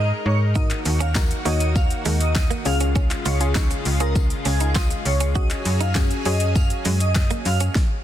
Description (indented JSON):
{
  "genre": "dance-pop",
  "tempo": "100 BPM",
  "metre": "4/4",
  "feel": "straight",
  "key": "unclear",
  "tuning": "A4 = 441 Hz",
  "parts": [
    { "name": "airy dreamy lead", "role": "melody", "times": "0.0-7.6 s", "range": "Ab4 to F5", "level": "-29 LUFS", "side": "right 1 dB", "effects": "chorus, phaser, sidechain pumping, tape echo" },
    { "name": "soft round pluck", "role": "accompaniment", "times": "0.0-7.1 s", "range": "Db4 to Db5", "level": "-30 LUFS", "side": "left 3 dB", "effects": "chorus, sidechain pumping" },
    { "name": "lush unison pad", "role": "sustained chords", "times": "0.0-7.7 s", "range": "Db3 to Bb4", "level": "-30 LUFS", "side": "left 2 dB", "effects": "chorus, sidechain pumping" },
    { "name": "slap-like FM bass", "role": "bass", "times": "0.0-7.7 s", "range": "Db2 to Ab2", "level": "-21 LUFS", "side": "equal", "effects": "sidechain pumping" },
    { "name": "direct-recorded clean electric guitar", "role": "riff", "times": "0.6-7.7 s", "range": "Ab3 to Gb4", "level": "-32 LUFS", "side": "right 9 dB", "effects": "analog chorus" },
    { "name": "deep house drum kit", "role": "drums", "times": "0.6-7.9 s", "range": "handclaps, hi-hat, kick drum, shaker, snare drum", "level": "-22 LUFS", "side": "equal", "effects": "soft clipping on snare" },
    { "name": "tambourine", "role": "percussion", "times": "0.6-7.6 s", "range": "none", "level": "-41 LUFS", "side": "left 10 dB", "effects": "none" }
  ],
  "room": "digital ambience",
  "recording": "dense, heavily limited modern master",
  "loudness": "-18 LUFS",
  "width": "side -12 dB against mid",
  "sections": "0.0-8.0 A section",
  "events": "break 0.0-0.6",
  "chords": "0.0 Absus2; 0.6 Ebm; 2.7 Db; 5.4 Gbsus2",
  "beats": "| 0.56 1.16 1.76 2.36 | 2.96 3.56 4.16 4.76 | 5.36 5.96 6.56 7.16 | 7.76"
}